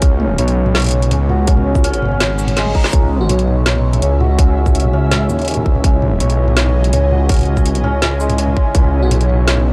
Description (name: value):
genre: half-time drum and bass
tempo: 165 BPM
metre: 4/4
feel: half-time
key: C# minor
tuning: A4 = 440 Hz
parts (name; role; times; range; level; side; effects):
- bowed-like drone; sustained chords; 0.0-9.7 s; C#3 to D#5; -30 LUFS; equal; none
- santur; arpeggios; 0.0-9.7 s; G#3 to C#5; -23 LUFS; equal; tape echo
- dark detuned saw bass; bass; 0.0-9.7 s; G#1 to D#2; -17 LUFS; equal; transformer saturation
- drum and bass drum kit; drums; 0.0-9.6 s; hi-hat, shaker, snare drum, toms; -22 LUFS; equal; none
- electronic kick drum; drums; 0.0-8.8 s; none; -16 LUFS; equal; none
- reverse cymbal; sound effects; 2.4-2.9 s; none; -32 LUFS; equal; none
- flickering grainy texture; texture; 3.8-9.7 s; E4 to G#5; -31 LUFS; equal; built-in reverb
- bell-like FM electric piano; melody; 3.2-3.6, 9.0-9.4 s; F#4; -29 LUFS; equal; chorus, tape echo
room: digital ambience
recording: dry, gritty hardware recording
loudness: -14 LUFS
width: mono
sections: 0.0-9.7 A section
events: reverse cymbal 2.4-2.9; drum fill 2.6-2.9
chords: 0.0 C#m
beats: | 0.02 0.39 0.75 1.11 | 1.48 1.84 2.20 2.57 | 2.93 3.29 3.66 4.02 | 4.38 4.75 5.11 5.48 | 5.84 6.20 6.57 6.93 | 7.29 7.66 8.02 8.38 | 8.75 9.11 9.48